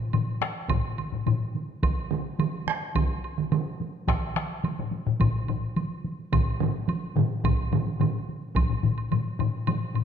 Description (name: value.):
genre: japanese traditional, taiko drum ensemble.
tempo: 107 BPM.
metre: 4/4.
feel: straight.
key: none.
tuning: none.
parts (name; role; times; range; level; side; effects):
taiko ensemble; percussion; 0.0-10.0 s; none; -31 LUFS; right 2 dB; none.
taiko ensemble; percussion; 0.1-10.0 s; none; -27 LUFS; left 6 dB; none.
woodblock; percussion; 0.1-10.0 s; none; -38 LUFS; right 5 dB; none.
taiko ensemble; percussion; 0.7-8.7 s; none; -29 LUFS; right 1 dB; none.
solo taiko drums; percussion; 2.1-8.1 s; none; -28 LUFS; right 8 dB; none.
room: wet recital hall reverb, RT60 1.8 s.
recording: dark, warm production.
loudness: -25 LUFS.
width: side -8 dB against mid.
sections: 0.0-8.6 A section; 8.6-10.0 B section.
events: none.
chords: none.